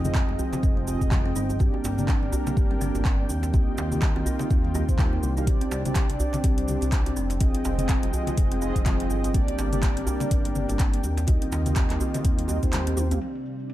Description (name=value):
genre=afro house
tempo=124 BPM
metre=4/4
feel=swing 58% on 16ths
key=C minor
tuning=A4 = 440 Hz
part: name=warm analog pad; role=sustained chords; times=0.0-13.7 s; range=C3 to G5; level=-35 LUFS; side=left 2 dB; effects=chorus, vintage 12-bit sampler grit, sidechain pumping
part: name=kalimba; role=arpeggios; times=0.0-13.1 s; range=Bb3 to C5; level=-32 LUFS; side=right 1 dB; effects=sidechain pumping, tape echo
part: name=mellow synth brass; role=stabs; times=0.0-13.7 s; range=Bb3 to F5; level=-32 LUFS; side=right 3 dB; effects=chorus, sidechain pumping, tape echo
part: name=smooth gliding synth bass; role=bass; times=0.0-13.2 s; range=F1 to Eb2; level=-28 LUFS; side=equal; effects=sidechain pumping
part: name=deep house drum kit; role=drums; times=0.0-13.7 s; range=cabasa, crash cymbal, handclaps, hi-hat, toms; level=-34 LUFS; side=equal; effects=overdrive, low-pass filter on perc, low-pass filter on snare, low-pass filter on hats, low-pass filter on toms, low-pass filter on cymbals
part: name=electronic kick drum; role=drums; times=0.1-12.7 s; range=none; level=-23 LUFS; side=equal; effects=none
part: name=congas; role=percussion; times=0.1-13.1 s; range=none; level=-34 LUFS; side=left 3 dB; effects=none
part: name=djembe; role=percussion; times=0.1-13.2 s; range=none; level=-33 LUFS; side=right 1 dB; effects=none
room=little or no reverb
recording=none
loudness=-22 LUFS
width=side -14 dB against mid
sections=0.0-13.2 A section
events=kick drops out 12.7-13.2; drum fill 13.0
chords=0.0 Fm7; 1.6 Gm; 3.5 Eb; 5.5 Csus2; 7.4 Fm7; 9.3 Gm; 11.3 Eb; 13.2 Csus2